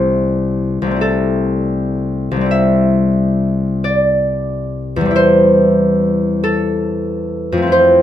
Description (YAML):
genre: classical, solo harp piece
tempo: 38-47 BPM (dotted quarters)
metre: 6/8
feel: rubato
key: unclear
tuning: A4 = 440 Hz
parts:
  - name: concert harp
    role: solo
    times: 0.0-8.0 s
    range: C2 to E5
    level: -12 LUFS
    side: left 1 dB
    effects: none
room: light reverb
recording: minimal, uncompressed stereo recording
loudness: -13 LUFS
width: side -11 dB against mid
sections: 0.0-8.0 A section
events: none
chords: 0.0 Am/C; 2.5 C; 5.2 C/E